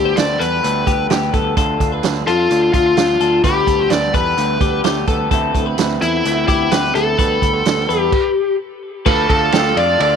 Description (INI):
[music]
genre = jangly indie pop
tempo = 128 BPM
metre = 4/4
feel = straight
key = unclear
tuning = A4 = 440 Hz
[part]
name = biting lead guitar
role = melody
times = 0.0-10.2 s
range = E4 to D5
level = -17 LUFS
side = left 3 dB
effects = overdrive, tape echo
[part]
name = electric guitar through a small old amp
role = accompaniment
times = 0.0-10.2 s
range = D3 to A4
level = -24 LUFS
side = right 13 dB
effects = none
[part]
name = twelve-string electric guitar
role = arpeggios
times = 0.0-10.2 s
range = F4 to C5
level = -21 LUFS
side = left 12 dB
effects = tape echo
[part]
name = picked electric bass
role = bass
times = 0.0-10.2 s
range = D2 to F2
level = -23 LUFS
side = right 1 dB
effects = none
[part]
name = vintage drum kit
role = drums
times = 0.2-10.1 s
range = crash cymbal, hi-hat, kick drum, ride cymbal, snare drum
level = -19 LUFS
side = right 4 dB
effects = none
[part]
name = combo organ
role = accompaniment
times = 9.1-10.2 s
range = A3 to A4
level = -22 LUFS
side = right 13 dB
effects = none
[sound]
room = light reverb, studio reverb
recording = 1960s-style stereo with parts hard left and right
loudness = -13 LUFS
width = side -7 dB against mid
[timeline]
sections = 0.0-9.1 A section; 9.1-10.2 B section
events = stop 8.1-9.1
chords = 0.0 Gadd9/D; 1.6 Dm; 3.4 Gadd9/D; 9.1 Dm